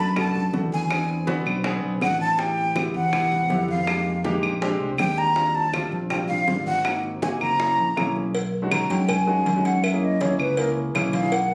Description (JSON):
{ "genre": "Afro-Cuban jazz", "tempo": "161 BPM", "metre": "4/4", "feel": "straight", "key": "B major from 8.3 s", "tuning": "A4 = 442 Hz", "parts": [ { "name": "breathy jazz flute", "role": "melody", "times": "0.0-8.1 s", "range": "F5 to B5", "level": "-26 LUFS", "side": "equal", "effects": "none" }, { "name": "warm concert grand piano", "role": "accompaniment", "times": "0.0-11.3 s", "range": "G3 to G#4", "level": "-30 LUFS", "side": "equal", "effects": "none" }, { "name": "fingered electric bass", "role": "bass", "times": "0.0-11.5 s", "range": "Gb1 to F#2", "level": "-29 LUFS", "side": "equal", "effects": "none" }, { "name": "bongos and cowbell", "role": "percussion", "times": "0.2-11.5 s", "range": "none", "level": "-33 LUFS", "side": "equal", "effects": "none" }, { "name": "claves", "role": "percussion", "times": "0.2-11.1 s", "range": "none", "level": "-30 LUFS", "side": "equal", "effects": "none" }, { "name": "congas", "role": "percussion", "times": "0.2-11.5 s", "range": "none", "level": "-36 LUFS", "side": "equal", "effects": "none" }, { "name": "breathy mellow concert flute", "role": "second line", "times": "8.7-11.5 s", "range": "A#4 to A#5", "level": "-27 LUFS", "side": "equal", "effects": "none" } ], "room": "moderate studio reverb, RT60 0.6 s", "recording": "recorded on a phone in the room, studio reverb, compression", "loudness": "-23 LUFS", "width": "mono", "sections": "0.0-8.3 A section; 8.3-11.5 B section", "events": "flute solo 8.3-11.5", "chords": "0.0 Bm7; 0.9 E7b13; 2.4 Am7; 3.9 Fm11; 4.6 Bb13; 5.4 Ebmaj13; 6.9 Ab9; 7.6 F#7; 8.3 B69; 9.8 F#7", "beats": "0.16 0.53 | 0.90 1.27 1.65 2.02 | 2.39 2.76 3.13 3.50 | 3.87 4.25 4.62 4.99 | 5.36 5.74 6.11 6.48 | 6.85 7.23 7.60 7.97 | 8.34 8.72 9.09 9.46 | 9.83 10.21 10.58 10.95 | 11.32" }